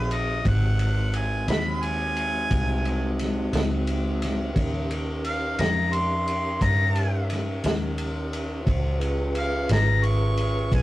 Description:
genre	slow blues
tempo	58 BPM (dotted quarters)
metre	12/8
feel	straight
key	Ab mixolydian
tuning	A4 = 440 Hz
part	clear harmonica	melody	0.0-10.8 s	Cb5 to Db6	-27 LUFS	left 1 dB	overdrive
part	mellow tonewheel organ	sustained chords	0.0-10.8 s	Ab3 to C5	-30 LUFS	equal	slow rotary speaker
part	vintage muted fingered electric bass	bass	0.0-10.8 s	Ab1 to G2	-26 LUFS	equal	none
part	vintage drum kit	drums	0.1-10.8 s	kick drum, ride cymbal, snare drum	-28 LUFS	equal	none
room	moderate booth ambience, RT60 0.2 s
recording	rough rehearsal-room recording, tube saturation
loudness	-22 LUFS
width	side -16 dB against mid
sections	0.0-10.8 A section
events	harmonica solo 0.0-10.8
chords	0.0 Ab7; 4.6 Eb7; 8.7 Db7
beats	| 0.45 1.48 2.50 3.53 | 4.56 5.58 6.61 7.63 | 8.66 9.69 10.71

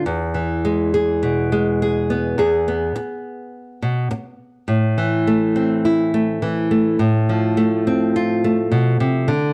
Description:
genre	folk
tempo	104 BPM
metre	4/4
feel	straight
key	A minor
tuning	A4 = 441 Hz
part	nylon-string guitar	solo	0.0-9.5 s	E2 to G#4	-19 LUFS	equal	none
room	moderate large studio reverb, RT60 0.8 s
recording	dark, warm production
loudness	-19 LUFS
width	mono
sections	0.0-2.4 A section; 2.4-4.7 B section; 4.7-9.5 C section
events	none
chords	0.1 E; 4.7 Am; 7.0 F/A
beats	| 0.06 0.64 1.22 1.80 | 2.38 2.96 3.53 4.11 | 4.69 5.27 5.84 6.42 | 7.00 7.57 8.15 8.72 | 9.30

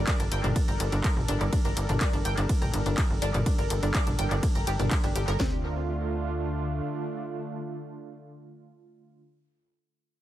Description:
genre	melodic techno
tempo	124 BPM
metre	4/4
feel	straight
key	D minor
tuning	A4 = 440 Hz
part	warm analog pad	sustained chords	0.0-9.2 s	D3 to Bb4	-35 LUFS	right 1 dB	chorus, tremolo, vintage 12-bit sampler grit, sidechain pumping
part	analog pluck	arpeggios	0.0-5.6 s	C4 to Bb6	-34 LUFS	equal	chorus, phaser, sidechain pumping, analog delay
part	tight sequencer bass	bass	0.0-6.8 s	G1 to D2	-29 LUFS	equal	sidechain pumping
part	punchy analog drum machine	drums	0.1-5.4 s	handclaps, hi-hat, ride cymbal, rim click, toms	-33 LUFS	left 1 dB	overdrive, sidechain pumping on hats, sidechain pumping on cymbals, sidechain pumping on toms, analog delay
part	techno drum kit	drums	0.1-5.5 s	kick drum, snare drum	-27 LUFS	equal	overdrive
room	little or no reverb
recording	echo-heavy mix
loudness	-25 LUFS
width	side -13 dB against mid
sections	0.0-5.4 A section; 5.4-9.3 B section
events	drop 0.0-5.4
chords	0.0 Gm; 5.4 Dm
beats	0.07 0.56 1.04 | 1.53 2.01 2.49 2.98 | 3.46 3.94 4.43 4.91 | 5.40 5.88 6.37 6.85 | 7.33 7.82 8.30 8.78

